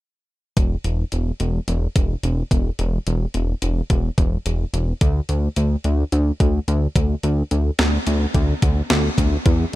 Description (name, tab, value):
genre	synth-pop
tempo	108 BPM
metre	4/4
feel	straight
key	unclear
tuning	A4 = 440 Hz
part	chorused synth bass	bass	0.6-9.7 s	E1 to E2	-19 LUFS	equal	none
part	clean 12-bit digital drum machine	drums	0.6-9.6 s	hi-hat, kick drum, snare drum	-20 LUFS	equal	none
room	little or no reverb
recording	none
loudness	-18 LUFS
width	side -16 dB against mid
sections	0.6-9.5 A section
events	none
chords	none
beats	| 0.57 1.12 1.68 2.23 | 2.79 3.35 3.90 4.46 | 5.01 5.57 6.12 6.68 | 7.24 7.79 8.35 8.90 | 9.46